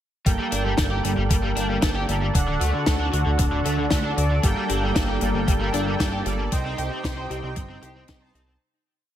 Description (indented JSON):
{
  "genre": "synthwave",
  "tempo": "115 BPM",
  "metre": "4/4",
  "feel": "straight",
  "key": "G harmonic minor",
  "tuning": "A4 = 437 Hz",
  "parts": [
    { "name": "lush unison pad", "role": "sustained chords", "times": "0.3-8.6 s", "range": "C3 to A4", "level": "-30 LUFS", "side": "equal", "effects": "chorus, sidechain pumping" },
    { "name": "crunchy overdriven guitar", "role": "riff", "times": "0.3-8.5 s", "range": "D3 to C5", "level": "-29 LUFS", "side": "left 1 dB", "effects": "ensemble chorus, vintage 12-bit sampler grit, digital delay" },
    { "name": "analog synth brass", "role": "stabs", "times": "0.3-8.6 s", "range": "Bb3 to A5", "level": "-29 LUFS", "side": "right 3 dB", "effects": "chorus, digital delay" },
    { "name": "chorused synth bass", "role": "bass", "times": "0.3-8.6 s", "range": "D1 to D2", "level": "-26 LUFS", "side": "equal", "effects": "tube saturation" },
    { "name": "electronic kick drum", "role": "drums", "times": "0.3-8.2 s", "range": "none", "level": "-23 LUFS", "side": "equal", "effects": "none" },
    { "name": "tight funk drum kit", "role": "drums", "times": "0.3-8.5 s", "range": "hi-hat, snare drum", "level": "-28 LUFS", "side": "left 3 dB", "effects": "gated reverb" },
    { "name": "thumb-piano-like synth pluck", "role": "arpeggios", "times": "4.4-8.6 s", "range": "G3 to C5", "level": "-33 LUFS", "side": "left 3 dB", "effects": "chorus, digital delay" }
  ],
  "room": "light reverb, digital ambience",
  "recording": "none",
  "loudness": "-20 LUFS",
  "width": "side -11 dB against mid",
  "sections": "0.3-8.6 verse",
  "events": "fade-out 5.8-8.6",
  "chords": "0.3 Gmadd9; 2.3 D; 4.4 Gmadd9; 6.5 Cm"
}